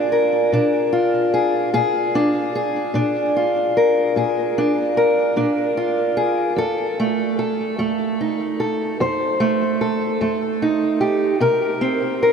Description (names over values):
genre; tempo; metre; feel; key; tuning
blues; 50 BPM (dotted quarters); 12/8; straight; unclear; A4 = 441 Hz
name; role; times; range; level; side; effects
fingerpicked steel-string acoustic guitar; solo; 0.0-12.3 s; F2 to C5; -17 LUFS; equal; ping-pong delay
room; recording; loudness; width
wet huge ambient reverb, RT60 7.3 s; dreamy mix soaked in reverb; -17 LUFS; side -6 dB against mid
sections
0.0-12.3 A section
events
none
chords
0.0 Bb7; 6.6 F7; 11.4 C7(no3)